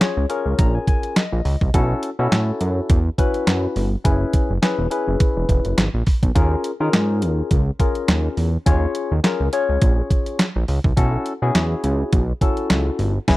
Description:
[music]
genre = early-eighties boogie funk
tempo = 104 BPM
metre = 4/4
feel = swing 56% on 16ths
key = Eb phrygian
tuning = A4 = 439 Hz
[part]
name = barky tine electric piano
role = accompaniment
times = 0.0-13.4 s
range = Db4 to Db6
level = -23 LUFS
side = left 3 dB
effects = overdrive, phaser
[part]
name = detuned 8-bit digital drum machine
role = drums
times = 0.0-13.4 s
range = crash cymbal, handclaps, hi-hat, kick drum, snare drum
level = -18 LUFS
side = equal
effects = none
[part]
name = fat analog bass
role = bass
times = 0.2-13.4 s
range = Fb1 to Eb3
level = -20 LUFS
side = equal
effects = none
[sound]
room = digital ambience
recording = dry, close 1970s-style studio recording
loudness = -17 LUFS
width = side -18 dB against mid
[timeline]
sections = 0.0-13.4 A section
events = tine electric piano fill 0.0-1.7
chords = 0.0 Eb9sus4; 1.7 B9sus4; 4.0 Gb9sus4; 6.4 Eb9sus4; 11.0 B9sus4

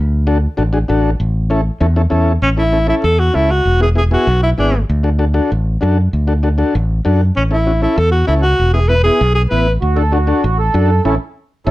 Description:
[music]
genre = latin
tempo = 195 BPM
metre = 4/4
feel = straight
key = A major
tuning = A4 = 439 Hz
[part]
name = fingered electric bass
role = bass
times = 0.0-11.7 s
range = E1 to F#2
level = -14 LUFS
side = equal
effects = none
[part]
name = combo organ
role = accompaniment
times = 0.3-11.7 s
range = B3 to B4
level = -18 LUFS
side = left 2 dB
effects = none
[part]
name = breathy alto saxophone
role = melody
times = 2.4-4.8, 7.4-9.7 s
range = C#4 to B4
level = -15 LUFS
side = equal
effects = none
[part]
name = mellow accordion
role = second line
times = 9.8-11.7 s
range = C#4 to A4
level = -18 LUFS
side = right 5 dB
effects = none
[sound]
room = light reverb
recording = dark, warm production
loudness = -12 LUFS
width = side -17 dB against mid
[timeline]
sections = 0.0-2.4 A section; 2.4-11.7 B section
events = band accent 11.1-11.7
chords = 0.0 D; 1.2 A; 3.7 E; 4.9 D; 7.4 A; 8.6 E; 9.8 D; 11.1 A

